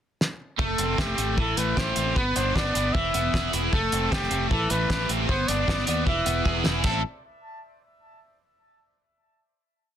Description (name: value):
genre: indie rock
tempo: 154 BPM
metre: 4/4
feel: straight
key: A minor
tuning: A4 = 445 Hz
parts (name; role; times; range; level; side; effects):
- cloth-damped thuddy drum kit; drums; 0.2-6.9 s; crash cymbal, hi-hat, kick drum, snare drum; -27 LUFS; equal; none
- breathy trumpet; melody; 0.6-7.0 s; G4 to A5; -29 LUFS; equal; digital delay
- crunchy overdriven guitar; riff; 0.6-7.0 s; E3 to A4; -26 LUFS; equal; none
- fingered electric bass; bass; 0.6-7.0 s; E1 to D#2; -30 LUFS; equal; none
room: little or no reverb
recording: dense, heavily limited modern master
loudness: -22 LUFS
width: side -10 dB against mid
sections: 0.0-0.6 pickup bar; 0.6-6.8 pre-chorus; 6.8-8.4 final chord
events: drum fill 0.2-0.6, 6.5-6.8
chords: 0.0 N.C.; 0.6 F; 1.4 Am7; 2.2 G; 2.9 E; 3.7 F; 4.5 Am7; 5.3 G; 6.1 E; 6.8 Am